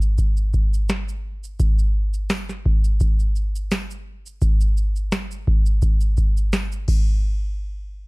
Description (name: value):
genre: pop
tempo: 85 BPM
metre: 4/4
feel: swing 55% on 16ths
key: none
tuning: none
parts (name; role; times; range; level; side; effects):
- booming analog drum machine; drums; 0.0-7.1 s; crash cymbal, kick drum, shaker, snare drum; -19 LUFS; equal; none
- tambourine; percussion; 2.3-7.2 s; none; -42 LUFS; left 4 dB; none
room: little or no reverb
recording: dark, warm production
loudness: -18 LUFS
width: side -28 dB against mid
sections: 0.0-7.2 A section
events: none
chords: none